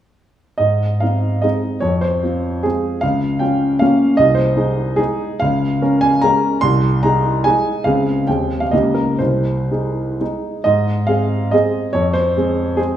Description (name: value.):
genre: classical, romantic triple-time dance for piano with dotted rhythms.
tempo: 112-164 BPM.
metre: 3/4.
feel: rubato.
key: Ab major.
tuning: A4 = 441 Hz.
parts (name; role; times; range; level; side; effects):
clear grand piano; solo; 0.6-13.0 s; C2 to C6; -14 LUFS; equal; none.
room: wet recital hall reverb, RT60 1.6 s.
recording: small room ambience.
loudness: -15 LUFS.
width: side -11 dB against mid.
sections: 0.6-10.7 A section; 10.7-13.0 A section.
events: none.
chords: 0.6 Ab; 1.8 Fm; 3.0 Bbm/Db; 4.2 Ab/C; 5.4 Db6; 6.6 Ab/C; 7.8 Dbmaj7; 8.3 Ab/Eb; 8.7 Eb7/Db; 9.2 Ab/C; 10.7 Ab; 11.9 Fm.